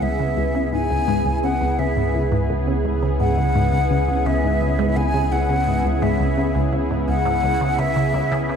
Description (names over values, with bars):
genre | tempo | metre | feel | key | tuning
ambient, sequencer-driven space music | 85 BPM | 4/4 | straight | C# minor | A4 = 438 Hz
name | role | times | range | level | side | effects
breathy mellow silver concert flute | melody | 0.0-8.6 s | E5 to G#5 | -24 LUFS | left 2 dB | tape echo
lush unison pad | sustained chords | 0.0-8.6 s | C#3 to G#4 | -23 LUFS | right 1 dB | chorus
resonant blip pluck | riff | 0.0-8.6 s | C#2 to C#3 | -23 LUFS | equal | chorus, phaser, tape echo
round analog bass | bass | 0.0-8.6 s | C#2 | -25 LUFS | equal | none
room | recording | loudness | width
wet scoring stage reverb, RT60 1.9 s | dark, warm production | -18 LUFS | side -7 dB against mid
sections
0.0-8.6 A section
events
none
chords
0.0 C#m7